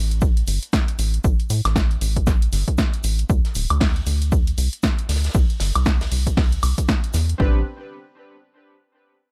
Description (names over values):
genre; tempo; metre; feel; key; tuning
deep house; 117 BPM; 4/4; swing 59% on 16ths; A minor; A4 = 440 Hz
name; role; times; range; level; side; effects
rubbery square bass; bass; 0.0-7.6 s; D1 to A2; -23 LUFS; equal; sidechain pumping
punchy analog drum machine; drums; 0.1-7.4 s; hi-hat, snare drum, woodblock; -28 LUFS; equal; overdrive
electronic kick drum; drums; 0.2-7.5 s; none; -22 LUFS; equal; overdrive
loose indie drum kit; drums; 0.2-7.3 s; hi-hat, shaker, snare drum; -39 LUFS; equal; sidechain pumping on hats, high-pass filter on hats, high-pass filter on snare, sidechain pumping on perc, high-pass filter on perc, high-pass filter on room
chorused polysynth; stabs; 7.4-7.6 s; C4 to B4; -31 LUFS; equal; sidechain pumping, tape echo
room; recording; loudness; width
small room ambience; none; -20 LUFS; mono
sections
0.0-7.4 A section; 7.4-9.3 B section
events
filter sweep on analog synth bass 0.0-7.4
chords
0.0 Gsus2; 3.3 N.C.; 5.3 C; 7.4 Am11